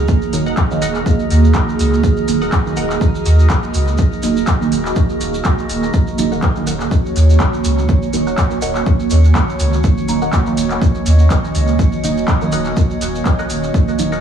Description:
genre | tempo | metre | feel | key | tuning
dub techno | 123 BPM | 4/4 | swing 55% on 16ths | Eb minor | A4 = 440 Hz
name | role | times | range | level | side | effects
granular cloud pad | sustained chords | 0.0-14.2 s | Eb3 to Eb5 | -20 LUFS | right 3 dB | built-in reverb, wide subtle chorus, sidechain pumping
warm sub bass | bass | 0.0-14.2 s | Eb1 to Eb2 | -15 LUFS | equal | sidechain pumping
drifting glass-harmonics texture | texture | 0.0-14.2 s | Db4 to Db5 | -27 LUFS | equal | chorus, built-in reverb, sidechain pumping
electronic kick drum | drums | 0.1-13.9 s | none | -15 LUFS | equal | none
maracas | percussion | 0.1-14.2 s | none | -31 LUFS | right 4 dB | none
deep mellow chord stab | stabs | 0.3-14.1 s | Eb3 to Eb4 | -22 LUFS | right 4 dB | chorus, phaser, cassette tape, sidechain pumping, dub echo
soft vintage rhythm box | drums | 0.3-14.1 s | handclaps, hi-hat | -25 LUFS | left 1 dB | dub echo
filtered dub chord stab | riff | 0.5-2.9, 6.3-14.2 s | Bb4 to Gb5 | -28 LUFS | left 2 dB | phaser, sidechain pumping, dub echo
room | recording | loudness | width
light reverb | small room ambience | -13 LUFS | side -8 dB against mid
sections
0.0-14.2 A section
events
none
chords
0.0 Ebm

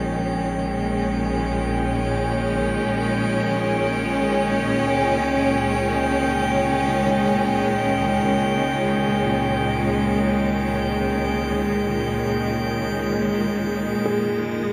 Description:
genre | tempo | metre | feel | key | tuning
ambient | free time | none | none | unclear | A4 = 436 Hz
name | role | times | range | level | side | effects
rich chamber string section | sustained chords | 0.0-14.7 s | Bb2 to Db4 | -23 LUFS | equal | none
rich symphonic double bass section | bass | 0.0-14.7 s | F1 to Db2 | -31 LUFS | equal | none
drifting glass-harmonics texture | texture | 0.0-14.7 s | Eb5 to G6 | -30 LUFS | equal | chorus, built-in reverb
felt-muted upright piano | melody | 14.1-14.7 s | Ab4 | -28 LUFS | equal | tape echo
room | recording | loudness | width
wet concert hall reverb, RT60 2.3 s | none | -22 LUFS | mono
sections
0.0-14.7 A section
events
none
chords
0.0 Bbm; 4.8 Dbsus2; 14.1 Fm7

